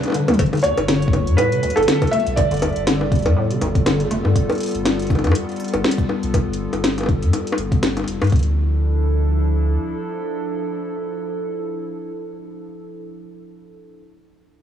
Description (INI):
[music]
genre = IDM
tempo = 121 BPM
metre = 4/4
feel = swing 56% on 16ths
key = unclear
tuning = A4 = 441 Hz
[part]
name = warbly tape-like pad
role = sustained chords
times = 0.0-13.1 s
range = E3 to B4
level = -26 LUFS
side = left 1 dB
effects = chorus, built-in reverb
[part]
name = organic electronic drum kit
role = drums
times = 0.0-8.5 s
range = bongos, cowbell, hi-hat, snare drum, toms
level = -22 LUFS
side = left 1 dB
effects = overdrive
[part]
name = deep acid bass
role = arpeggios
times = 0.1-4.2 s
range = D2 to A3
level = -24 LUFS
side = equal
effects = lush chorus, tape echo
[part]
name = warm sub bass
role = bass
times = 0.4-9.8 s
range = F1 to G2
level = -20 LUFS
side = equal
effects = none
[part]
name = electronic kick drum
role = drums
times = 0.4-8.4 s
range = none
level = -19 LUFS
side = left 1 dB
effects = overdrive
[part]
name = felt-muted upright piano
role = melody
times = 0.6-4.1 s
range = A4 to E5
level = -21 LUFS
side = right 2 dB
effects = tape echo
[sound]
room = light reverb, digital ambience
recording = worn, warbling old tape, cassette tape, warbly pitch drift, small room ambience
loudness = -17 LUFS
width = side -9 dB against mid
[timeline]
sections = 0.4-8.3 A section; 8.3-12.3 B section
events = break 0.0-0.4; drum fill 0.0-0.4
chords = 0.4 G9; 8.3 Dmadd9